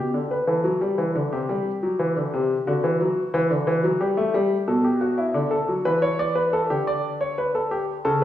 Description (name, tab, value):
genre	classical, baroque-style two-part invention for grand piano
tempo	89 BPM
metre	4/4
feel	straight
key	G major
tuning	A4 = 440 Hz
part	clear grand piano	solo	0.0-8.2 s	B2 to D5	-20 LUFS	left 1 dB	none
room	wet recital hall reverb, RT60 1.5 s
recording	heard from further back in the room, small room ambience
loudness	-20 LUFS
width	side -12 dB against mid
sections	0.0-8.2 A section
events	none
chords	0.0 G/B; 1.3 C; 2.7 D; 4.0 G; 5.3 D5; 6.7 G5/D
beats	0.65 1.31 1.99 | 2.67 3.34 4.01 4.67 | 5.34 6.02 6.69 7.37 | 8.05